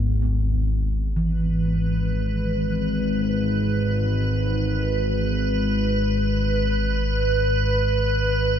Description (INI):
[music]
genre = dark ambient drone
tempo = free time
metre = none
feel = none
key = unclear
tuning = A4 = 440 Hz
[part]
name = gamelan-type bossed gongs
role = arpeggios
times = 0.0-6.8 s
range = D2 to B3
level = -30 LUFS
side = equal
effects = ping-pong delay
[part]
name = analog drone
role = drone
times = 0.0-8.6 s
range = G#1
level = -22 LUFS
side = left 1 dB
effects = chorus
[part]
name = icy glass pad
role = texture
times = 1.6-8.6 s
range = B4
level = -26 LUFS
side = right 2 dB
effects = chorus, built-in reverb
[sound]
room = wet huge ambient reverb, RT60 8.0 s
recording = nothing above 10.9 kHz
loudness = -20 LUFS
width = side -9 dB against mid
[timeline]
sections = 0.0-1.2 A section; 1.2-8.6 B section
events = none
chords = 0.0 E